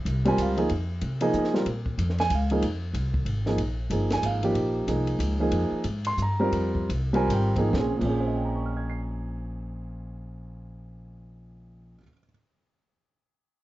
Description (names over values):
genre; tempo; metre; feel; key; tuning
modal jazz; 131-186 BPM; 3/4; swing 61% on 8ths; Bb dorian; A4 = 440 Hz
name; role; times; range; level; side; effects
upright bass; bass; 0.0-11.9 s; G1 to Db3; -28 LUFS; equal; none
compact cocktail drum kit; drums; 0.1-8.1 s; crash cymbal, hi-hat, kick drum, ride cymbal, snare drum; -36 LUFS; left 1 dB; none
warm grand piano; accompaniment; 0.3-12.3 s; Bb2 to C7; -26 LUFS; right 1 dB; none
room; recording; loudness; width
moderate small room reverb, RT60 0.5 s; worn, warbling old tape, cassette tape, warbly pitch drift, nothing above 7.7 kHz; -24 LUFS; side -16 dB against mid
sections
0.0-7.7 A section; 7.7-10.5 B section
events
slowing down 5.5-7.7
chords
0.0 Bbm9